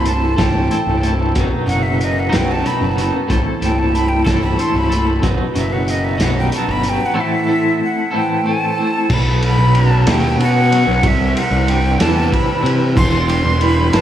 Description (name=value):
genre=psychedelic rock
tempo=62 BPM (dotted quarters)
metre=6/8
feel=straight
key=B phrygian dominant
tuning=A4 = 439 Hz
part: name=breathy bright jazz flute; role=melody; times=0.0-14.0 s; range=D#5 to C6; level=-20 LUFS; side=equal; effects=diffuse ambient delay
part: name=twelve-string electric guitar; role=riff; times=0.0-14.0 s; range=B1 to A4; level=-18 LUFS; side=equal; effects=tremolo
part: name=fuzz picked electric bass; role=bass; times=0.0-14.0 s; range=B0 to C3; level=-17 LUFS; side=equal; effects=overdrive
part: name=vintage drum kit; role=drums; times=0.1-14.0 s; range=crash cymbal, hi-hat, kick drum, ride cymbal, snare drum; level=-21 LUFS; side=equal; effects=none
room=moderate lush hall reverb, RT60 2.7 s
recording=dreamy mix soaked in reverb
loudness=-13 LUFS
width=side -11 dB against mid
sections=0.0-9.1 A section; 9.1-14.0 B section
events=none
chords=0.0 Am/C; 1.4 B; 3.3 Am/C; 5.2 B; 7.2 Am; 9.1 B; 11.0 C; 13.0 Em